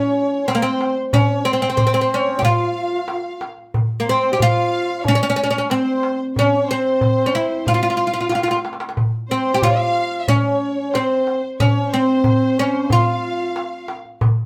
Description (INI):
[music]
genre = Arabic maqam ensemble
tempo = 92 BPM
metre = 4/4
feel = straight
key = unclear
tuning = A4 = 440 Hz
[part]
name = oud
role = melody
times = 0.0-13.9 s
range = Bb3 to G4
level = -21 LUFS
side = equal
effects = none
[part]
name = bright alto flute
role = second line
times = 0.0-13.9 s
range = C4 to F4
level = -29 LUFS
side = equal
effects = none
[part]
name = rich studio violin section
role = second line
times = 0.0-13.9 s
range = C5 to F5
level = -28 LUFS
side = equal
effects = none
[part]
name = darbuka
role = percussion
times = 0.5-14.4 s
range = none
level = -22 LUFS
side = equal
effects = none
[sound]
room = moderate studio reverb, RT60 0.7 s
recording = band playing live in one room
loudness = -19 LUFS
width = mono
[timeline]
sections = 0.0-14.5 A section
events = drum fill 8.3-9.0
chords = none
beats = 0.48 | 1.13 1.78 2.44 3.09 | 3.74 4.39 5.05 5.70 | 6.35 7.01 7.66 8.32 | 8.97 9.63 10.28 10.94 | 11.60 12.25 12.91 13.57 | 14.22